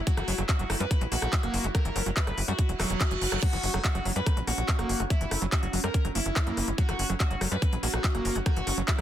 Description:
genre	psychedelic trance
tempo	143 BPM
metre	4/4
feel	straight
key	unclear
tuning	A4 = 440 Hz
part	pulsing gated texture	sustained chords	0.0-9.0 s	F#3 to E4	-39 LUFS	right 3 dB	chorus, built-in reverb, sidechain pumping
part	tight sequencer bass	bass	0.0-9.0 s	E1 to F#2	-31 LUFS	equal	none
part	overdriven synth lead	melody	0.1-9.0 s	E4 to B4	-34 LUFS	equal	distortion, phaser, cassette tape, sidechain pumping, digital delay
part	screaming distorted acid line	riff	0.1-9.0 s	E3 to G4	-35 LUFS	equal	distortion, chorus, auto-pan, sidechain pumping, digital delay
part	electronic kick drum	drums	0.1-9.0 s	none	-26 LUFS	equal	overdrive
part	techno drum kit	drums	0.1-9.0 s	crash cymbal, handclaps, hi-hat, rim click	-32 LUFS	left 1 dB	soft clipping on snare
part	reverse cymbal and zap	sound effects	2.8-3.4 s	none	-36 LUFS	right 6 dB	none
room	digital ambience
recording	dense, heavily limited modern master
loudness	-25 LUFS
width	side -11 dB against mid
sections	0.0-9.0 A section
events	reverse cymbal 2.8-3.4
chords	0.0 F#5

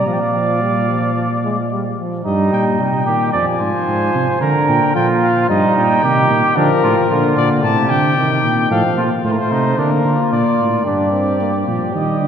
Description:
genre	classical, imitative canzona for brass ensemble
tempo	111 BPM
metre	4/4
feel	straight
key	unclear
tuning	A4 = 440 Hz
part	clear flugelhorn	second line	0.0-12.3 s	D4 to D5	-19 LUFS	right 3 dB	none
part	clear trombone	accompaniment	0.0-12.3 s	C3 to D4	-19 LUFS	equal	none
part	dark tuba	bass	0.0-12.3 s	F2 to Eb3	-19 LUFS	right 1 dB	none
part	mellow cornet	melody	0.1-12.3 s	Bb4 to Bb5	-20 LUFS	left 5 dB	none
room	wet church reverb, RT60 2.9 s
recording	none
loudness	-13 LUFS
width	side -8 dB against mid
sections	0.0-2.3 A section; 2.3-10.9 B section; 10.9-12.3 A section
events	none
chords	0.1 Bb; 2.3 Eb/G; 3.3 Ddim/F (rootless); 4.4 Bb; 5.5 Eb/G; 6.6 Bb; 7.6 Adim; 8.7 F/A; 9.8 Bb/D; 10.9 Gm

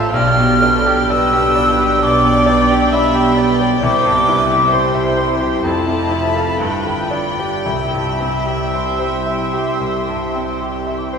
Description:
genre	classical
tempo	54-67 BPM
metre	4/4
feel	rubato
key	C major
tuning	A4 = 437 Hz
part	bright concert grand piano	melody	0.0-11.2 s	A1 to F5	-20 LUFS	equal	none
part	warm symphonic violin section	melody	0.0-11.2 s	G5 to A5	-26 LUFS	left 4 dB	none
part	concert flute	second line	0.0-11.2 s	A5 to F6	-18 LUFS	equal	none
part	warm symphonic violin section	second line	0.0-11.2 s	E4 to F5	-26 LUFS	left 2 dB	none
part	rich chamber viola section	accompaniment	0.0-11.2 s	A4 to E5	-23 LUFS	right 3 dB	none
part	mellow French horn section	sustained chords	0.0-11.2 s	G3 to F4	-24 LUFS	left 1 dB	none
part	rich symphonic double bass section	bass	0.0-11.2 s	F1 to C2	-26 LUFS	right 2 dB	none
part	warm symphonic cello section	bass	0.0-11.2 s	F2 to C3	-22 LUFS	right 2 dB	none
part	timpani	percussion	3.8-9.2 s	none	barely audible	none	none
room	wet cathedral reverb, RT60 4.4 s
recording	recorded in a church or concert hall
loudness	-13 LUFS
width	side -6 dB against mid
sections	0.0-11.2 A section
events	none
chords	0.1 G7/B; 3.8 C; 5.6 Fmaj7; 6.6 G7; 7.7 C

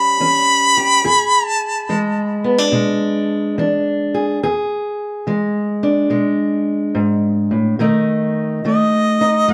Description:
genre	acoustic country blues, solo or duo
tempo	71 BPM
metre	4/4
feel	swing 67% on 8ths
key	unclear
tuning	A4 = 440 Hz
part	warm harmonica	melody	0.0-2.4, 8.7-9.5 s	D#5 to B5	-17 LUFS	equal	analog delay
part	fingerpicked steel-string acoustic guitar	accompaniment	0.0-9.5 s	E2 to G#4	-19 LUFS	equal	none
room	moderate studio reverb, RT60 0.7 s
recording	dark, warm production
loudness	-17 LUFS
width	mono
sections	0.0-9.5 A section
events	none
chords	0.0 A7 (rootless); 1.0 E7; 7.8 B7

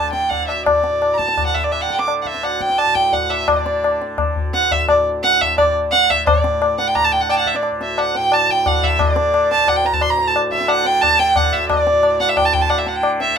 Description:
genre	indian classical, Hindustani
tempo	174 BPM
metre	4/4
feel	straight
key	D major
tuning	A4 = 441 Hz
part	rich violin	melody	0.0-13.4 s	D5 to D6	-16 LUFS	right 2 dB	none
part	tanpura	drone	0.0-13.4 s	D2 to D3	-28 LUFS	right 1 dB	none
part	tabla	percussion	0.1-13.3 s	none	-20 LUFS	left 3 dB	none
room	wet small room reverb, RT60 0.5 s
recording	minimal, uncompressed stereo recording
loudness	-14 LUFS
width	side -7 dB against mid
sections	0.0-6.3 A section; 6.3-13.4 B section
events	speeding up 0.0-13.4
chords	none

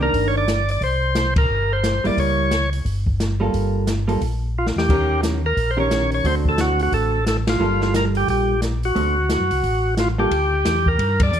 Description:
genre	soul jazz organ trio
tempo	177 BPM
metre	4/4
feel	swing 62% on 8ths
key	unclear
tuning	A4 = 439 Hz
part	percussive tonewheel organ	melody	0.0-11.4 s	F4 to D5	-21 LUFS	equal	slow rotary speaker, overdrive
part	vintage hollow-body jazz guitar	accompaniment	0.0-10.3 s	D3 to Bb4	-24 LUFS	right 2 dB	none
part	mellow tonewheel organ	bass	0.0-11.4 s	G1 to G2	-22 LUFS	equal	chorus vibrato, slow rotary speaker
part	open jazz drum kit	drums	0.1-11.4 s	crash cymbal, hi-hat, kick drum, ride cymbal, snare drum	-24 LUFS	equal	none
room	light reverb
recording	none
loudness	-17 LUFS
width	side -9 dB against mid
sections	0.0-10.3 A section; 10.3-11.4 A section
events	band accent 1.3, 7.4, 11.2; drum fill 4.6-4.9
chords	0.0 Cm9; 2.2 C#dim7; 3.5 Gm9; 4.9 Eb7; 6.2 D7; 7.6 Gm9; 9.0 D7; 10.3 Gm

